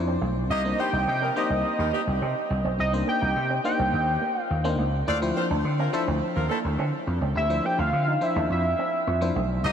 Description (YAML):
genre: funk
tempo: 105 BPM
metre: 4/4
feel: straight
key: C dorian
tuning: A4 = 440 Hz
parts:
  - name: FM electric piano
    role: accompaniment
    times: 0.0-9.7 s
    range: F3 to C5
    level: -30 LUFS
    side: left 2 dB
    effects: chorus
  - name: vintage slap bass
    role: bass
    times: 0.0-9.7 s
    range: B1 to D3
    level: -26 LUFS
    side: equal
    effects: none
  - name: electric guitar with an envelope filter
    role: riff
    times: 0.1-9.5 s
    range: A3 to Eb4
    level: -34 LUFS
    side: right 5 dB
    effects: lush chorus
  - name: fat analog lead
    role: melody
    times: 0.5-9.7 s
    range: Eb5 to G5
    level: -27 LUFS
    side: equal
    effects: chorus, diffuse ambient delay
  - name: clear horn section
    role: second line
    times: 0.5-9.7 s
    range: Eb3 to Eb5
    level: -33 LUFS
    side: equal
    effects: none
room: wet huge ambient reverb, RT60 7.3 s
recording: dreamy mix soaked in reverb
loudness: -22 LUFS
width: side -8 dB against mid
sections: 0.5-9.7 A section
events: none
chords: 0.0 Dm9; 0.5 Cm9; 5.1 Dm9